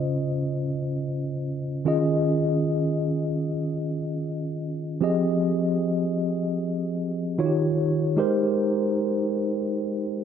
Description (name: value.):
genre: R&B.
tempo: free time.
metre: none.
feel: none.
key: unclear.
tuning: A4 = 439 Hz.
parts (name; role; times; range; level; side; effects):
mellow tine electric piano; solo; 0.0-10.2 s; Db3 to Eb5; -23 LUFS; equal; medium stereo tremolo.
room: moderate lush hall reverb, RT60 2.1 s.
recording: none.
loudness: -23 LUFS.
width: side -8 dB against mid.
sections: 0.0-10.2 A section.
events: none.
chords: 0.0 Dbmaj7; 1.9 Eb9sus4; 5.0 Fm7; 7.4 Eb7; 8.2 Abmaj7.